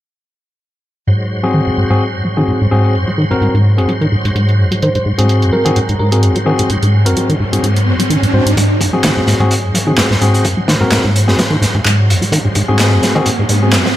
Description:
breakbeat, breaks; 128 BPM; 4/4; swing 55% on 16ths; Ab mixolydian; A4 = 441 Hz
bright tonewheel organ; sustained chords; 1.1-14.0 s; Ab2 to C5; -20 LUFS; equal; chorus vibrato, slow rotary speaker, vintage 12-bit sampler grit, sidechain pumping
deep acid bass; riff; 1.1-13.9 s; Gb2 to Gb3; -14 LUFS; equal; cassette tape
punchy analog drum machine; drums; 1.1-13.8 s; handclaps, hi-hat; -21 LUFS; right 1 dB; low-pass filter on hats, low-pass filter on snare, low-pass filter on room
overdriven tine electric piano; stabs; 1.4-13.8 s; C4 to C5; -18 LUFS; left 2 dB; low-pass filter, dub echo
bell-like FM electric piano; melody; 4.8-7.2 s; Bb4 to C5; -22 LUFS; right 2 dB; chorus, phaser, telephone sound, dub echo
riser; sound effects; 6.7-14.0 s; -23 LUFS; right 2 dB
crunchy breakbeat drum kit; drums; 8.6-14.0 s; hi-hat, kick drum, snare drum; -17 LUFS; equal; high-pass filter on kick, high-pass filter on hats, high-pass filter on snare, high-pass filter on room
light reverb, studio reverb; -11 LUFS; side -13 dB against mid
1.1-8.6 A section; 8.6-14.0 B section
filter sweep on drum 1.1-8.6; filter sweep on acid bass 1.1-8.6, 8.6-14.0; riser 6.7-8.6, 8.6-14.0; build-up 8.6-14.0
1.1 Ab7
| 1.07 1.54 2.01 2.48 | 2.95 3.42 3.88 4.35 | 4.82 5.29 5.76 6.23 | 6.70 7.17 7.63 8.10 | 8.57 9.04 9.51 9.98 | 10.45 10.92 11.38 11.85 | 12.32 12.79 13.26 13.73

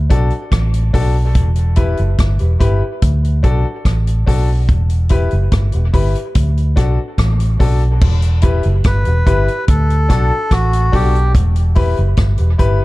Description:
dub reggae; 72 BPM; 4/4; straight; E minor; A4 = 440 Hz
vintage muted fingered electric bass; bass; 0.0-12.8 s; E1 to D2; -14 LUFS; equal
clear grand piano; stabs; 0.1-12.8 s; D4 to B4; -23 LUFS; left 4 dB; high-pass filter, dub echo
vintage drum kit; drums; 0.1-12.8 s; crash cymbal, hi-hat, kick drum, rim click; -16 LUFS; equal
melodica; melody; 8.9-11.3 s; F#4 to B4; -20 LUFS; equal; dub echo
little or no reverb; dark, warm production; -12 LUFS; side -19 dB against mid
0.0-8.0 A section; 8.0-12.8 B section
0.0 D; 1.4 Em; 3.0 D; 4.7 Em; 6.4 D; 8.0 Em; 9.7 D; 11.3 Em
0.52 | 1.36 2.19 3.02 3.85 | 4.69 5.52 6.35 7.19 | 8.02 8.85 9.68 10.51 | 11.34 12.18

